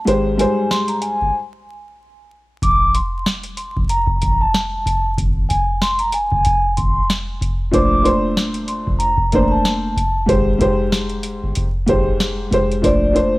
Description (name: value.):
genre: hip hop, boom-bap hip-hop.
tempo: 94 BPM.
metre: 4/4.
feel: swing 58% on 16ths.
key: unclear.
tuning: A4 = 439 Hz.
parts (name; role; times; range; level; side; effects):
vibraphone with soft mallets; melody; 0.0-13.4 s; C5 to D6; -19 LUFS; equal; high-pass filter, low-pass filter, cassette tape.
warm upright piano; accompaniment; 0.1-1.4, 7.7-13.4 s; Ab2 to C5; -17 LUFS; equal; cassette tape, high-pass filter, low-pass filter.
soft dub sub bass; bass; 0.1-13.2 s; G1 to Bb1; -22 LUFS; equal; none.
booming analog drum machine; drums; 0.1-13.3 s; hi-hat, kick drum, snare drum; -20 LUFS; equal; cassette tape.
room: studio ambience.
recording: home recording on cassette, vinyl crackle, faint mains hum.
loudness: -15 LUFS.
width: side -20 dB against mid.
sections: 0.0-12.8 A section.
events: break 0.0-2.6.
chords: 0.1 Abmaj7; 2.6 N.C.; 7.7 Bbmaj9; 10.3 Abmaj7; 12.8 Bbmaj9.